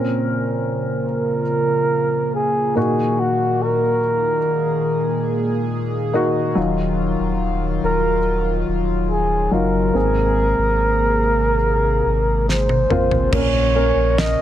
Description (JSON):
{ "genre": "pop ballad", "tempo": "71 BPM", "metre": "4/4", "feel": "straight", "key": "Bb minor", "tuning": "A4 = 440 Hz", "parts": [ { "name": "warm upright piano", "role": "accompaniment", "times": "0.0-14.4 s", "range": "Ab2 to Bb4", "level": "-22 LUFS", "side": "equal", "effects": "none" }, { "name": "chorused pulse-width pad", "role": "sustained chords", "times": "0.0-14.4 s", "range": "Bb2 to Ab4", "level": "-24 LUFS", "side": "left 2 dB", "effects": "none" }, { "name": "breathy flugelhorn", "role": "melody", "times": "1.1-14.4 s", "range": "Gb4 to Eb5", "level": "-20 LUFS", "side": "right 1 dB", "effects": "ping-pong delay" }, { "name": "warm sub bass", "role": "bass", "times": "6.6-14.4 s", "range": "Eb1 to Bb1", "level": "-22 LUFS", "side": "equal", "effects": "none" }, { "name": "damped 70s drum kit", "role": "drums", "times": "12.5-14.4 s", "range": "crash cymbal, kick drum, snare drum, toms", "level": "-22 LUFS", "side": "equal", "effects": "none" } ], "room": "small room ambience", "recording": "none", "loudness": "-16 LUFS", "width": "side -11 dB against mid", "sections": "0.0-13.3 A section; 13.3-14.4 B section", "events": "drum fill 12.5-13.3", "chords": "0.0 Bbmadd9; 2.8 Gb6/Bb; 6.6 Ebmadd9; 9.9 Abadd9; 13.3 Bbm", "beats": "0.65 1.50 2.34 | 3.19 4.03 4.88 5.72 | 6.57 7.41 8.26 9.10 | 9.95 10.79 11.64 12.48 | 13.33 14.17" }